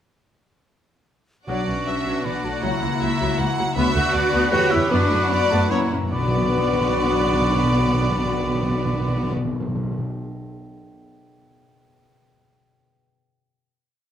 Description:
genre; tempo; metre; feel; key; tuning
classical, dramatic, fast romantic movement for symphony orchestra; 142-160 BPM; 3/4; straight; B minor; A4 = 442 Hz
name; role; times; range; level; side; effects
rich studio violin section; melody; 1.5-9.3 s; B4 to F#5; -27 LUFS; left 2 dB; none
clear symphonic violin section; second line; 1.5-9.3 s; F#4 to G5; -33 LUFS; left 2 dB; none
dark clarinet; second line; 1.5-9.3 s; D4 to G4; -31 LUFS; right 1 dB; none
mellow hollow concert flute; second line; 1.5-9.3 s; F#5 to F#6; -28 LUFS; left 1 dB; none
warm oboe; second line; 1.5-9.3 s; F#4 to D5; -29 LUFS; right 3 dB; none
rich symphonic viola section; accompaniment; 1.5-9.3 s; E3 to G4; -28 LUFS; equal; none
dark French horn section; sustained chords; 1.5-9.3 s; E3 to E4; -29 LUFS; left 4 dB; none
concert harp; arpeggios; 1.5-10.2 s; E2 to F#5; -30 LUFS; left 9 dB; none
rich studio double bass section; bass; 1.5-9.3 s; B1 to F#2; -28 LUFS; right 2 dB; none
rich symphonic cello section; bass; 1.5-9.3 s; F#3 to F#4; -27 LUFS; right 2 dB; none
timpani; percussion; 1.5-2.0, 5.7-10.1 s; F#2 to B2; -26 LUFS; equal; none
room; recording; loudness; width
moderate scoring stage reverb, RT60 1.5 s; close, detailed microphones; -18 LUFS; side -10 dB against mid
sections
1.5-6.1 A section; 6.1-8.6 final chord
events
slowing down 3.2-6.1; timpani fill 5.7-6.1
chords
1.5 Bm; 2.6 F#7/C#; 3.8 Bm/D; 4.5 Em; 4.9 Bm/F#; 5.7 F#7; 6.1 Bm

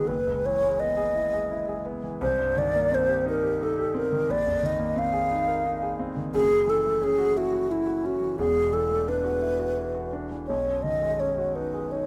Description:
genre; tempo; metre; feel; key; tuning
classical, impressionist duo for alto flute and grand piano; 87 BPM; 3/4; uneven beats, rubato; unclear; A4 = 439 Hz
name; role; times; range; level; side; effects
hollow alto flute; melody; 0.0-12.1 s; E4 to E#5; -26 LUFS; equal; none
warm concert grand piano; accompaniment; 0.0-12.1 s; E1 to A#4; -32 LUFS; equal; none
room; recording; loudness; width
light reverb; close, detailed microphones; -26 LUFS; mono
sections
0.0-12.1 A section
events
none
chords
0.1 F#9sus4; 2.2 Cm7; 4.3 A#9sus4; 6.3 F#m7; 8.4 E9sus4; 10.5 B69

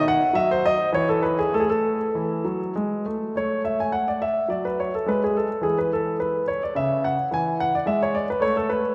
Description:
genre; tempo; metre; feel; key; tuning
classical, baroque-style suite movement for grand piano; 95-111 BPM; 3/4; rubato; A major; A4 = 440 Hz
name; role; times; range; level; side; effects
clear grand piano; solo; 0.0-8.9 s; C#3 to G#5; -23 LUFS; equal; none
room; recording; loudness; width
wet church reverb, RT60 3.7 s; none; -23 LUFS; mono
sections
0.0-3.4 A section; 3.4-8.9 B section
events
none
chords
0.0 D#m6; 0.9 N.C.; 1.5 A5; 3.4 N.C.; 5.1 E; 6.7 C#madd11; 7.9 N.C.; 8.4 A5

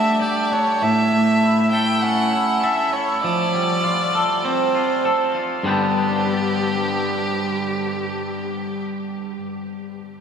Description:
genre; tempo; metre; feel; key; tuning
rock; 99 BPM; 4/4; straight; unclear; A4 = 441 Hz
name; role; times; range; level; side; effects
clear violin; melody; 0.0-8.8 s; G4 to G5; -23 LUFS; right 2 dB; tape echo
twangy electric guitar; arpeggios; 0.0-9.4 s; G2 to A4; -20 LUFS; equal; tape echo
room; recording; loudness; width
wet huge ambient reverb, RT60 7.5 s; dreamy mix soaked in reverb, studio ambience; -18 LUFS; side -7 dB against mid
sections
0.0-5.7 A section; 5.7-8.1 B section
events
none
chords
0.0 Gsus2; 0.8 A; 3.2 Fadd9; 5.7 G

